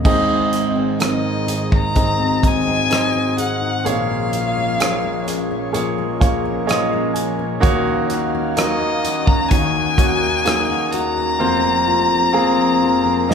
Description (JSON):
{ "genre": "pop ballad", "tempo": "64 BPM", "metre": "4/4", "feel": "straight", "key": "unclear", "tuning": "A4 = 440 Hz", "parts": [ { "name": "warm concert grand piano", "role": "accompaniment", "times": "0.0-13.3 s", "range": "F1 to Ab5", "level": "-20 LUFS", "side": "right 2 dB", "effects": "none" }, { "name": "airy breathy pad", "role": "sustained chords", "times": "0.0-13.3 s", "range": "Eb2 to Gb5", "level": "-25 LUFS", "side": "equal", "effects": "chorus, phaser" }, { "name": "fingerpicked steel-string acoustic guitar", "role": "arpeggios", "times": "0.0-13.3 s", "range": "F2 to Bb4", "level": "-25 LUFS", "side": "left 7 dB", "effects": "none" }, { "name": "modern studio drum kit", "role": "drums", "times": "0.1-13.3 s", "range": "crash cymbal, hi-hat, kick drum, rim click, snare drum", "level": "-20 LUFS", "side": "equal", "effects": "none" }, { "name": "rich violin", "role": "melody", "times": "1.0-13.3 s", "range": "Eb5 to Bb5", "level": "-20 LUFS", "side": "left 3 dB", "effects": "none" } ], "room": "wet large studio reverb, RT60 1.3 s", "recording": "band playing live in one room", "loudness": "-15 LUFS", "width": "side -6 dB against mid", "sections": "0.1-13.3 A section", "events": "grand piano fill 5.8-7.6", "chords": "0.1 Ab; 3.9 Bbm7; 7.6 Ebm7; 11.4 Fsus4" }